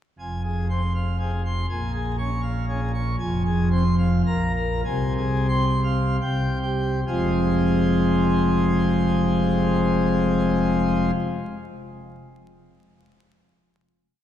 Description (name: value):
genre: classical, organ toccata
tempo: 66-121 BPM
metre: 3/4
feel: straight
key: F minor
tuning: A4 = 440 Hz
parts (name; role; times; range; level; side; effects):
- pipe organ, plenum; solo; 0.2-11.1 s; F1 to Db6; -20 LUFS; equal; none
room: wet church reverb, RT60 2.9 s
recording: dark, warm production, vinyl crackle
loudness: -20 LUFS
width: side -10 dB against mid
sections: 0.2-7.1 A section; 7.1-12.5 final chord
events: slowing down 2.4-7.1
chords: 0.2 Fm; 1.7 Bbm7; 3.2 Fm; 4.3 N.C.; 4.8 Fm/C; 6.2 C5; 7.1 Fm